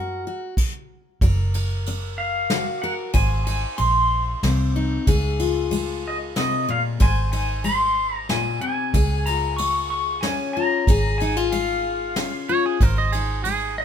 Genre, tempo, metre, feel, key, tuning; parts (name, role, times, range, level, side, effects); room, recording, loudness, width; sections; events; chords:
honky-tonk and classic country; 93 BPM; 3/4; straight; Db major; A4 = 440 Hz
twangy electric guitar; second line; 0.0-0.5, 12.5-13.8 s; Ab4 to Eb5; -25 LUFS; right 6 dB
picked steel-string acoustic guitar; accompaniment; 0.0-13.8 s; Ab2 to C5; -26 LUFS; left 6 dB
vintage muted fingered electric bass; bass; 0.0-13.8 s; Gb1 to F#2; -24 LUFS; equal
soft brush drum kit; drums; 0.6-13.6 s; crash cymbal, kick drum, ride cymbal, snare drum; -25 LUFS; right 1 dB
pedal steel guitar; melody; 2.2-13.8 s; Eb5 to Db6; -23 LUFS; left 1 dB
little or no reverb; minimal, uncompressed stereo recording; -19 LUFS; side -8 dB against mid
0.0-1.2 A section; 1.2-13.8 B section
0.0 F#; 1.2 Gb; 3.1 Ab; 5.1 Db; 7.0 Ab; 8.9 Db; 12.8 Ab